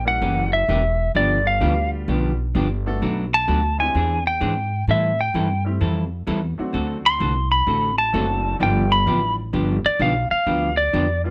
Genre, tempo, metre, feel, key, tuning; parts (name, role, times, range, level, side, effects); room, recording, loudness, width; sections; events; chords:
country, western swing; 129 BPM; 4/4; swing 67% on 8ths; G mixolydian; A4 = 439 Hz
clean lap steel guitar; melody; 0.0-11.2 s; D5 to C6; -22 LUFS; equal
upright bass; bass; 0.0-11.3 s; E1 to A2; -26 LUFS; equal
bright upright piano; accompaniment; 0.1-11.3 s; F3 to A4; -32 LUFS; equal
vintage hollow-body jazz guitar; accompaniment; 0.2-11.1 s; B2 to A4; -27 LUFS; equal
light reverb; -21 LUFS; mono
0.0-11.3 A section
electric slide guitar solo 0.0-11.3
0.0 C#dim7; 1.1 G7; 3.0 Bm7; 3.9 E7alt; 4.9 Am7; 6.7 D7; 8.6 G7